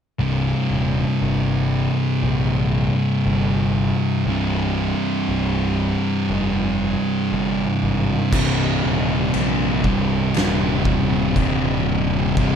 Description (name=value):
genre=stoner and doom metal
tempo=59 BPM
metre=4/4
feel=straight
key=C minor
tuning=A4 = 440 Hz
part: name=thick fuzz guitar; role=riff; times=0.2-12.6 s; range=C2 to C3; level=-22 LUFS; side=left 7 dB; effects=distortion
part: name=thick fuzz guitar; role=riff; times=0.2-12.6 s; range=C2 to C3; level=-22 LUFS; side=right 9 dB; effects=distortion
part: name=fuzz picked electric bass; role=bass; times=0.2-12.6 s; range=C1 to Bb1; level=-25 LUFS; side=equal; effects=overdrive
part: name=organ-like drone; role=sustained chords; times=11.0-12.6 s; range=C3 to C4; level=-32 LUFS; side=equal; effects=none
part: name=oversized low-tuned drum kit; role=drums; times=8.3-12.6 s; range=crash cymbal, kick drum, snare drum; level=-24 LUFS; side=left 1 dB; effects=none
room=little or no reverb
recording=none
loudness=-18 LUFS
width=side -8 dB against mid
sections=0.2-8.3 A section; 8.3-12.6 B section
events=none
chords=0.2 C5; 8.3 Cm